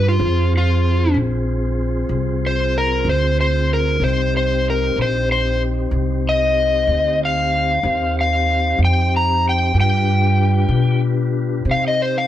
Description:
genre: blues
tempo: 63 BPM (dotted quarters)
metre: 12/8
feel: straight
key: C minor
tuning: A4 = 440 Hz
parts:
  - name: overdriven slide guitar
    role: melody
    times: 0.0-12.3 s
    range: F4 to Bb5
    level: -19 LUFS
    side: left 2 dB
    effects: none
  - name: mellow tonewheel organ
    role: sustained chords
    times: 0.0-12.3 s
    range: C4 to C5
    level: -24 LUFS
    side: left 1 dB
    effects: slow rotary speaker
  - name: upright bass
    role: bass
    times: 0.0-12.3 s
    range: Bb1 to C3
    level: -19 LUFS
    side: equal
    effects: none
room: moderate studio reverb, RT60 0.7 s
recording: band playing live in one room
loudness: -16 LUFS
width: side -12 dB against mid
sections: 0.0-11.7 A section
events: electric slide guitar solo 0.0-11.7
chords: 0.2 Fm; 4.0 Cm; 9.7 G7; 11.7 Cm

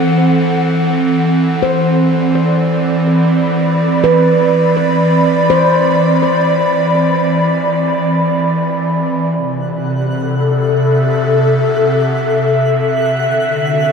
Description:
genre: ambient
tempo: 62 BPM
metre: 4/4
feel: straight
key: unclear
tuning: A4 = 440 Hz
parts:
  - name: airy breathy pad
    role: sustained chords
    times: 0.0-13.9 s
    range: C3 to B5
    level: -12 LUFS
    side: equal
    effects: chorus
  - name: handpan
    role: arpeggios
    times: 0.0-8.4 s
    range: B4 to C5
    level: -18 LUFS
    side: equal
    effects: tape echo
  - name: twinkling granular texture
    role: texture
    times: 9.7-13.9 s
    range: F#5 to F#6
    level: -27 LUFS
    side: left 1 dB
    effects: built-in reverb
room: wet spring reverb, RT60 2.6 s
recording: echo-heavy mix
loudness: -11 LUFS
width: side -6 dB against mid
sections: 0.0-9.4 A section; 9.4-13.9 B section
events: fade-in on synth texture 9.4-13.9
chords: 0.0 D7/E (rootless); 1.6 Cmaj7/E; 9.4 C6; 13.2 Dadd9

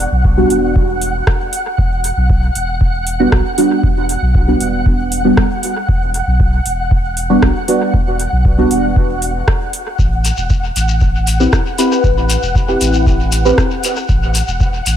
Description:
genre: dub techno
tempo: 117 BPM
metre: 4/4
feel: straight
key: E minor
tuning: A4 = 440 Hz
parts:
  - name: warm sub bass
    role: bass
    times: 0.0-15.0 s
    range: E1 to B1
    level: -17 LUFS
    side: equal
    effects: sidechain pumping
  - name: flickering grainy texture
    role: texture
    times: 0.0-15.0 s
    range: F#5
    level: -22 LUFS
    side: equal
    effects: built-in reverb, sidechain pumping
  - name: electronic kick drum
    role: drums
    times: 0.2-14.7 s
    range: none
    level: -14 LUFS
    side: equal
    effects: none
  - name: deep mellow chord stab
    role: stabs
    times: 0.4-13.6 s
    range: G3 to B4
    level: -16 LUFS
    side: right 1 dB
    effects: chorus, phaser, dub echo
  - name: booming analog drum machine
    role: drums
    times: 0.5-15.0 s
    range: hi-hat, rim click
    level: -22 LUFS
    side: right 1 dB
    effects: dub echo
  - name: shekere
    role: percussion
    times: 10.0-15.0 s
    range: none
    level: -24 LUFS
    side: left 6 dB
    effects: dub echo
room: light reverb, digital ambience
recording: echo-heavy mix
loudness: -12 LUFS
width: side -10 dB against mid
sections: 0.0-15.0 A section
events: none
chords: 0.0 Em9; 10.0 Am9

